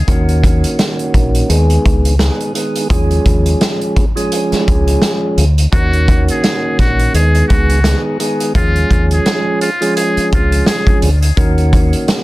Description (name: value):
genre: hip hop, boom-bap hip-hop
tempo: 85 BPM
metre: 4/4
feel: swing 57% on 16ths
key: unclear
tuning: A4 = 442 Hz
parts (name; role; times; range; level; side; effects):
- percussive tonewheel organ; accompaniment; 0.1-12.2 s; Eb3 to Ab4; -17 LUFS; right 1 dB; slow rotary speaker, cassette tape, high-pass filter, low-pass filter
- deep dub fingered electric bass; bass; 0.1-11.9 s; Bb1 to Eb2; -13 LUFS; equal; none
- vintage drum kit; drums; 0.1-12.2 s; hi-hat, kick drum, snare drum; -15 LUFS; equal; none
- trumpet with metal mute; melody; 5.7-11.0 s; F4 to Ab4; -20 LUFS; left 1 dB; high-pass filter, low-pass filter, ping-pong delay
room: little or no reverb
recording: dense, heavily limited modern master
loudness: -11 LUFS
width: side -18 dB against mid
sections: 0.0-12.2 A section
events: none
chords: 0.1 Ebm7; 1.5 Abm; 2.9 Db/Eb; 5.7 Ebm7; 7.1 Abm; 8.6 Db/Eb; 11.4 Ebm7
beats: | 0.08 0.79 1.49 2.20 | 2.90 3.61 4.32 5.02 | 5.73 6.43 7.14 7.85 | 8.55 9.26 9.96 10.67 | 11.38 12.08